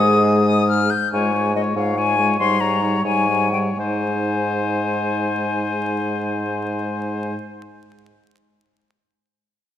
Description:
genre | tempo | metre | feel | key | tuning
quick classical-period movement for wind quintet | 80-96 BPM (dotted quarters) | 6/8 | rubato | Ab major | A4 = 442 Hz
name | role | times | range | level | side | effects
silver concert flute | melody | 0.0-7.4 s | Eb5 to G6 | -23 LUFS | left 6 dB | none
warm oboe | second line | 0.0-7.4 s | C5 to Eb6 | -25 LUFS | left 4 dB | none
mellow clarinet | accompaniment | 0.0-7.4 s | Eb4 to Ab4 | -32 LUFS | right 5 dB | none
warm French horn | accompaniment | 0.0-7.4 s | G3 to Ab3 | -24 LUFS | left 1 dB | none
warm bassoon | bass | 0.0-7.4 s | Ab2 | -23 LUFS | right 1 dB | none
room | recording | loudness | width
wet scoring stage reverb, RT60 1.9 s | vinyl crackle | -18 LUFS | side -10 dB against mid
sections
0.0-1.1 A section; 1.1-3.8 B section; 3.8-6.6 C section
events
slowing down 0.5-3.8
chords
0.0 Ab5; 1.1 Db/Ab; 2.4 Eb7/Ab; 3.8 Ab

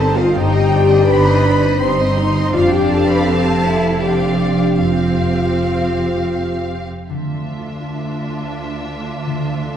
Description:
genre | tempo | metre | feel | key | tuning
cinematic, emotional film score for orchestra | 76-84 BPM | 3/4 | rubato | F lydian | A4 = 440 Hz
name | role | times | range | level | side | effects
warm studio violin section | melody | 0.0-9.8 s | C5 to F5 | -29 LUFS | left 3 dB | none
warm studio violin section | second line | 0.0-9.8 s | F4 to C6 | -25 LUFS | equal | none
warm studio viola section | accompaniment | 0.0-9.8 s | C4 to G4 | -25 LUFS | equal | none
dark French horn section | sustained chords | 0.0-6.7 s | F4 to C5 | -18 LUFS | left 2 dB | none
concert harp | arpeggios | 0.0-9.8 s | F2 to A5 | -24 LUFS | left 2 dB | none
rich studio cello section | bass | 0.0-9.8 s | D2 to E4 | -23 LUFS | right 1 dB | none
warm studio double bass section | bass | 0.0-6.8 s | F1 to G1 | -19 LUFS | right 2 dB | none
room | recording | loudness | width
wet recital hall reverb, RT60 1.5 s | heard from further back in the room | -14 LUFS | side -9 dB against mid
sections
0.0-7.1 A section; 7.1-9.8 B section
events
none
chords
0.0 Cm/G; 2.5 Fsus2; 7.1 Dmadd9

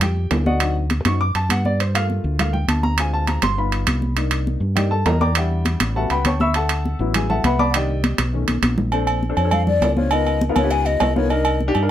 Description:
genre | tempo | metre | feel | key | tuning
Afro-Cuban jazz | 202 BPM | 4/4 | straight | unclear | A4 = 439 Hz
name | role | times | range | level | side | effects
warm baby grand piano | accompaniment | 0.0-11.9 s | Eb3 to E6 | -23 LUFS | left 2 dB | none
fingered electric bass | bass | 0.0-11.9 s | G1 to G2 | -21 LUFS | equal | none
congas | percussion | 0.0-11.9 s | none | -24 LUFS | equal | none
timbales and agogo bells | percussion | 0.0-11.9 s | none | -23 LUFS | right 5 dB | none
breathy mellow concert flute | melody | 9.4-11.6 s | Db5 to Ab5 | -22 LUFS | left 5 dB | none
room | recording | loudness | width
light reverb | none | -17 LUFS | side -11 dB against mid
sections
0.0-8.9 A section; 8.9-11.9 A section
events
grand piano solo 0.0-8.9; drum fill 8.5-8.9; flute solo 8.9-11.9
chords
0.0 Bb (rootless); 0.6 D7b9; 1.8 Gm7; 3.0 Dm7b5; 3.6 G7b13; 4.2 Cm9; 5.4 Em7; 6.0 A13; 6.5 D69; 7.7 Cm9; 8.3 B9; 8.9 Bbmaj9; 10.1 Db13; 11.3 Cm9

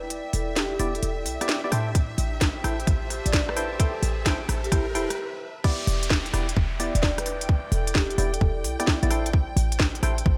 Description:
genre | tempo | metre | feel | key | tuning
UK garage, two-step garage | 130 BPM | 4/4 | swing 67% on 16ths | E minor | A4 = 440 Hz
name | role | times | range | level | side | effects
rich chamber violin section | sustained chords | 0.0-10.4 s | E5 to G5 | -42 LUFS | equal | sidechain pumping
short 808-style bass | bass | 0.0-10.4 s | E1 to A2 | -29 LUFS | equal | tube saturation
riser and downlifter | sound effects | 1.2-9.3 s | none | -41 LUFS | equal | none
warbly tape-like pad | texture | 0.0-10.4 s | E4 to A5 | -40 LUFS | equal | chorus, built-in reverb, sidechain pumping
garage drum kit | drums | 0.1-10.2 s | crash cymbal, hi-hat, rim click, snare drum | -30 LUFS | equal | none
marimba with soft mallets | melody | 0.3-8.5 s | G4 to D5 | -36 LUFS | equal | tape echo
percussive organ stab | stabs | 0.8-10.2 s | B3 to G5 | -34 LUFS | equal | subtle chorus, tape echo
electronic kick drum | drums | 1.9-10.4 s | none | -25 LUFS | equal | none
room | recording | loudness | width
light reverb, digital ambience | none | -25 LUFS | mono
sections
0.0-5.6 A section; 5.6-10.4 B section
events
build-up 0.0-5.6; filter sweep on synth stab 0.0-5.6; break 5.2-5.6; drop 5.6-10.4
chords
0.0 Em7; 1.7 Am7; 5.6 Em7; 9.1 Am7

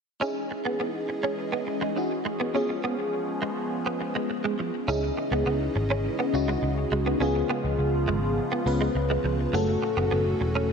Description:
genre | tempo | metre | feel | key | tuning
pop | 103 BPM | 4/4 | straight | unclear | A4 = 438 Hz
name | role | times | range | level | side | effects
FM electric piano with soft pad layer | accompaniment | 0.2-10.7 s | A3 to B4 | -28 LUFS | left 2 dB | chorus, phaser
phased analog pad | sustained chords | 0.2-10.7 s | A2 to D#5 | -31 LUFS | equal | phaser, chorus
direct-recorded clean electric guitar | riff | 0.2-10.7 s | E#3 to C#4 | -31 LUFS | right 3 dB | ensemble chorus, ping-pong delay
vintage muted picked electric bass | bass | 4.9-10.7 s | E1 to C#2 | -28 LUFS | equal | none
room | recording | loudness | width
moderate lush hall reverb, RT60 2.6 s | none | -24 LUFS | side -6 dB against mid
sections
0.2-4.9 A section; 4.9-10.7 B section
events
none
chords
0.2 C#madd9; 2.5 C#7; 4.9 C#madd9; 7.2 C#7; 9.5 F#m

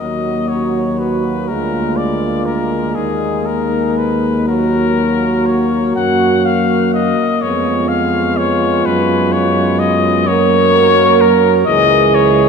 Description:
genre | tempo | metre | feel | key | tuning
classical, hymn-like piece for brass band | 38-43 BPM (dotted quarters) | 6/8 | rubato | Eb minor | A4 = 440 Hz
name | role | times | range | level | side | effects
warm cornet | melody | 0.0-12.5 s | Ab4 to Gb5 | -17 LUFS | left 7 dB | none
mellow French horn section | second line | 0.0-12.5 s | Eb4 to Bb4 | -17 LUFS | right 6 dB | none
mellow trombone section | accompaniment | 0.0-12.5 s | G#3 to Cb4 | -20 LUFS | left 2 dB | none
warm trombone | accompaniment | 0.0-12.5 s | E3 to Ab3 | -21 LUFS | right 3 dB | none
mellow tuba | bass | 0.0-12.5 s | C#2 to Gb2 | -19 LUFS | left 1 dB | none
room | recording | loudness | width
wet church reverb, RT60 3.8 s | none | -12 LUFS | side -5 dB against mid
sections
0.0-12.5 A section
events
none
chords
0.0 Ebm; 1.5 Bb7/D; 3.0 Ebm; 6.0 Gb; 7.4 Db7/F; 8.9 Gb; 11.7 C#madd9

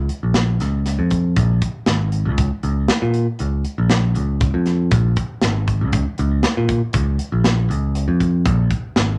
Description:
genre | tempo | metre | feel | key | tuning
progressive instrumental, band music in an uneven meter | 119 BPM | 7/4 | straight | Bb minor | A4 = 440 Hz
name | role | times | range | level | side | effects
picked electric bass | bass | 0.0-9.2 s | Ab1 to Bb2 | -20 LUFS | equal | none
modern studio drum kit | drums | 0.1-9.1 s | hi-hat, kick drum, snare drum | -23 LUFS | equal | none
room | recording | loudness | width
wet small room reverb, RT60 0.5 s | none | -19 LUFS | mono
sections
0.0-9.2 A section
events
none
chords
none

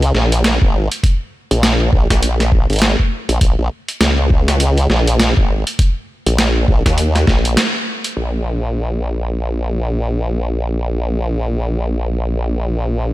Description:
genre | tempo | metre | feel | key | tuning
glitch hop | 101 BPM | 4/4 | swing 59% on 16ths | Bb minor | A4 = 439 Hz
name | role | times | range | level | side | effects
formant-sweep wobble bass | bass | 0.0-13.1 s | Ab1 to Eb2 | -16 LUFS | equal | chorus
boom bap sampler-style drum kit | drums | 0.0-8.1 s | hi-hat, snare drum | -18 LUFS | equal | low-pass filter on hats, low-pass filter on snare, low-pass filter on room
electronic kick drum | drums | 0.6-7.4 s | none | -14 LUFS | equal | none
room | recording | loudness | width
little or no reverb | none | -14 LUFS | side -16 dB against mid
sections
0.0-8.2 A section; 8.2-13.1 B section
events
break 7.6-8.2; band accent 7.6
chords
none

